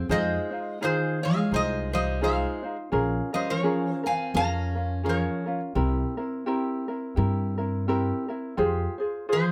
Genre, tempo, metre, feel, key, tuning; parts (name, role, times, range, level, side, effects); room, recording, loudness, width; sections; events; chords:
Hawaiian; 85 BPM; 4/4; swing 58% on 8ths; F minor; A4 = 440 Hz
metal-body resonator slide guitar; melody; 0.0-9.5 s; Ab4 to Bb5; -31 LUFS; equal
picked steel-string acoustic guitar; second line; 0.0-9.5 s; Eb3 to Db4; -32 LUFS; equal
ukulele; accompaniment; 0.0-9.5 s; C4 to C5; -31 LUFS; equal
upright bass; bass; 0.0-8.9 s; Bb1 to G2; -30 LUFS; equal
moderate studio reverb, RT60 0.5 s; -27 LUFS; mono
0.1-9.5 A section
0.1 Fm7; 2.9 Bbm7; 5.8 C7; 8.6 Fmadd9